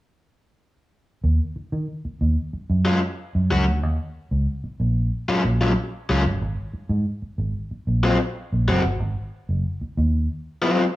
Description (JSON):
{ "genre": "funk", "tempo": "93 BPM", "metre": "4/4", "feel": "straight", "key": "Eb dorian", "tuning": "A4 = 440 Hz", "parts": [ { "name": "vintage muted fingered electric bass", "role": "bass", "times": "1.2-10.3 s", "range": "Gb1 to Eb3", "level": "-21 LUFS", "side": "equal", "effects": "none" }, { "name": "overdriven electric guitar", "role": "accompaniment", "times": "2.9-10.8 s", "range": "Gb3 to Gb4", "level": "-22 LUFS", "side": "left 2 dB", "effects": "none" } ], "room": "light reverb", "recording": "studio reverb", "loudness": "-21 LUFS", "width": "side -16 dB against mid", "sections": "1.2-11.0 A section", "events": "none", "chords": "1.2 Ebm9; 6.4 Ab13", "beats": "| 1.24 1.88 2.53 3.18 | 3.83 4.48 5.12 5.77 | 6.42 7.07 7.71 8.36 | 9.01 9.66 10.30" }